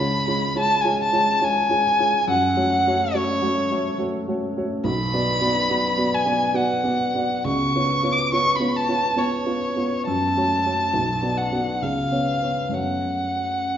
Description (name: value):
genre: classical, romantic duo for violin and grand piano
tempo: 69 BPM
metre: 3/4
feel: uneven beats, rubato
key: F# minor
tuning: A4 = 441 Hz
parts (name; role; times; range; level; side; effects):
- rich violin; melody; 0.0-13.8 s; C#5 to D6; -21 LUFS; left 1 dB; none
- warm baby grand piano; accompaniment; 0.0-13.8 s; B1 to D5; -23 LUFS; equal; none
room: wet recital hall reverb, RT60 1.7 s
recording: recorded in a church or concert hall, nothing above 7.5 kHz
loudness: -19 LUFS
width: side -9 dB against mid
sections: 0.0-13.8 A section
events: none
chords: 0.0 C#7; 2.3 F#m; 4.9 Bm; 7.4 C#7; 10.1 F#m; 10.9 Bm; 11.8 C#7; 12.7 F#m